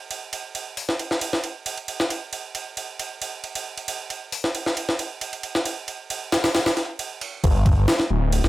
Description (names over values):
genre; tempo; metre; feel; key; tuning
breakbeat, breaks; 135 BPM; 4/4; straight; unclear; A4 = 443 Hz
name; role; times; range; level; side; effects
breakbeat sampler-style drum kit; drums; 0.1-8.5 s; hi-hat, kick drum, ride cymbal, snare drum; -24 LUFS; equal; high-pass filter on cymbals, high-pass filter on hats, high-pass filter on snare, high-pass filter on kick
phased detuned saw bass; bass; 7.4-8.5 s; D1 to G1; -19 LUFS; equal; phaser
room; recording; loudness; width
light reverb; none; -23 LUFS; side -17 dB against mid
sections
0.0-7.4 A section; 7.4-8.5 B section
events
drop 7.4-8.5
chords
none